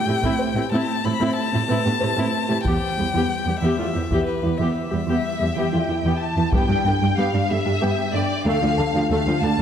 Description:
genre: cinematic, hybrid orchestral and electronic film score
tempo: 62 BPM (dotted quarters)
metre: 6/8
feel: straight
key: unclear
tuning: A4 = 442 Hz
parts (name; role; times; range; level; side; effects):
- warm violin; melody; 0.0-6.2 s; B4 to B5; -26 LUFS; left 6 dB; digital delay
- felt-muted upright piano; texture; 0.0-9.6 s; G4 to A5; -33 LUFS; left 2 dB; digital delay
- warm studio viola section; accompaniment; 0.1-9.6 s; D3 to A4; -26 LUFS; equal; none
- thumb-piano-like synth pluck; arpeggios; 0.1-9.5 s; D3 to G4; -26 LUFS; right 3 dB; chorus
- warm symphonic cello section; bass; 0.1-9.6 s; D2 to A2; -24 LUFS; right 1 dB; none
- solo taiko drums; drums; 0.2-7.8 s; none; -26 LUFS; left 1 dB; none
- warm symphonic violin section; melody; 5.2-9.6 s; D5 to A5; -25 LUFS; left 3 dB; none
room: wet scoring stage reverb, RT60 1.6 s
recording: none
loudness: -19 LUFS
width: side -8 dB against mid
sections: 0.0-6.5 A section; 6.5-9.6 B section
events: none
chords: 0.0 Am7; 2.7 Em; 6.5 G; 8.5 Dm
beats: | 0.71 1.68 | 2.65 3.62 | 4.59 5.55 | 6.52 7.49 | 8.46 9.43

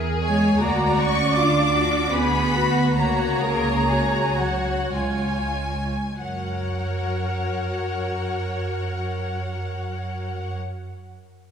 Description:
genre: classical, slow romantic movement for string orchestra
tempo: 45-81 BPM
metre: 3/4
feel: rubato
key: F# major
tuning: A4 = 440 Hz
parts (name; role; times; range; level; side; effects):
- warm studio violin section; melody; 0.0-10.5 s; E#4 to C#5; -30 LUFS; left 6 dB; none
- warm studio viola section; accompaniment; 0.0-10.6 s; E#4 to D5; -27 LUFS; right 1 dB; none
- dark studio double bass section; bass; 0.0-10.5 s; C#2 to F#2; -26 LUFS; right 2 dB; none
- rich studio violin section; second line; 0.2-10.6 s; F#5 to D6; -27 LUFS; left 2 dB; none
- dark chamber cello section; bass; 0.3-10.6 s; F#3 to D4; -27 LUFS; right 1 dB; none
room: wet concert hall reverb, RT60 2.2 s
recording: minimal, uncompressed stereo recording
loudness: -20 LUFS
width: side -7 dB against mid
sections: 0.0-6.2 A section; 6.2-9.8 B section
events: slowing down 0.0-6.2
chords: 0.0 F#7/E (rootless); 0.6 Dmaj7#5; 2.1 Bm6/D; 3.0 F#/C#; 4.9 C#; 6.2 F#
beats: | 0.62 1.36 2.13 | 2.97 3.88 4.95 | 6.21 7.41 8.60

